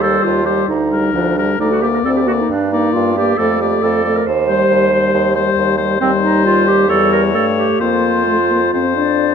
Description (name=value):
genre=quick classical-period movement for wind quintet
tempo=135 BPM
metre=4/4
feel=straight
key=unclear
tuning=A4 = 440 Hz
part: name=clear oboe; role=second line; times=0.0-9.3 s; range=Bb4 to D5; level=-20 LUFS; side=left 10 dB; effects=none
part: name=mellow French horn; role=accompaniment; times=0.0-9.3 s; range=F3 to D4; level=-18 LUFS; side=left 4 dB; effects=none
part: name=warm clarinet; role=accompaniment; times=0.0-9.2 s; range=C4 to C5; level=-17 LUFS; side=right 5 dB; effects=none
part: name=clear bassoon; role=bass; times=0.0-9.3 s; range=D2 to G2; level=-20 LUFS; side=right 2 dB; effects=none
part: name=mellow concert flute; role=melody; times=8.9-9.3 s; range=D5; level=-20 LUFS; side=left 12 dB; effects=none
room=moderate concert hall reverb, RT60 2.1 s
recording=none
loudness=-12 LUFS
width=side -7 dB against mid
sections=0.0-9.3 A section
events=none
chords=0.0 Cm/Eb; 0.7 Gm/D; 1.6 D5; 2.5 Gm; 3.4 Dm/F; 4.3 Cm/Eb; 6.9 A7/E; 7.8 Fsus4; 8.7 F5